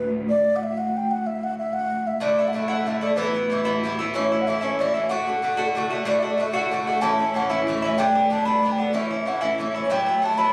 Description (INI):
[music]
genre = celtic folk, Celtic jig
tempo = 125 BPM (dotted quarters)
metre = 6/8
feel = straight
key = D major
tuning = A4 = 440 Hz
[part]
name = mellow baroque flute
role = melody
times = 0.0-10.5 s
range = B4 to B5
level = -25 LUFS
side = equal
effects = none
[part]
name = rich symphonic string section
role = drone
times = 0.0-10.5 s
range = D2 to A2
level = -32 LUFS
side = equal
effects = none
[part]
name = Irish bouzouki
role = accompaniment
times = 2.2-10.5 s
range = G2 to F#4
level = -27 LUFS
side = equal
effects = none
[sound]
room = moderate studio reverb, RT60 0.6 s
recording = recorded on a phone in the room, club reverb, compression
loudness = -23 LUFS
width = mono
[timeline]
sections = 0.0-6.1 A section; 6.1-10.5 B section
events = none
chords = 0.0 D5; 2.2 Dsus2; 3.2 Em; 4.1 A; 5.1 D; 7.0 A; 8.0 G; 8.9 A; 9.9 Emadd9